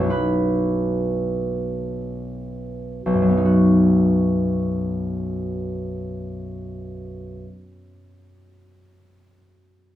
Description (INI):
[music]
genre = classical, solo harp piece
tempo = 38-44 BPM (dotted quarters)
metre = 6/8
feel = rubato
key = B major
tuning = A4 = 440 Hz
[part]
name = concert harp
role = solo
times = 0.0-7.6 s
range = B1 to C#6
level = -20 LUFS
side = equal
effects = none
[sound]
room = moderate studio reverb, RT60 0.5 s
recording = minimal, uncompressed stereo recording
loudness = -19 LUFS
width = side -12 dB against mid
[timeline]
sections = 0.0-3.1 A section; 3.1-6.0 B section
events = slowing down 0.0-3.1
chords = 0.1 B